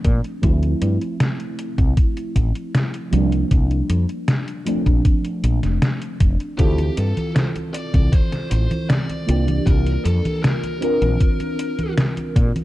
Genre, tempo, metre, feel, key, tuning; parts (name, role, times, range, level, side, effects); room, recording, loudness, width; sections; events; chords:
vaporwave; 78 BPM; 4/4; straight; D minor; A4 = 441 Hz
mellow FM electric piano; accompaniment; 0.0-12.6 s; F3 to Bb4; -25 LUFS; right 1 dB; phaser, ensemble chorus, analog delay
woody fretless electric bass; bass; 0.0-12.5 s; F1 to Bb2; -18 LUFS; equal
detuned 8-bit digital drum machine; drums; 0.0-12.6 s; congas, hi-hat, snare drum; -23 LUFS; equal; vintage 12-bit sampler grit, studio reverb
electronic kick drum; drums; 0.0-12.5 s; -17 LUFS; equal; vintage 12-bit sampler grit, studio reverb
biting lead guitar; melody; 6.6-11.9 s; G4 to D5; -30 LUFS; left 1 dB; overdrive, analog delay
little or no reverb; dark, warm production; -17 LUFS; side -16 dB against mid
0.0-6.6 A section; 6.6-12.6 A section
0.4 Dm7 (rootless); 3.1 C9sus4; 4.7 Bbmaj9; 6.6 Dm7; 9.3 C9sus4; 10.8 Bbadd9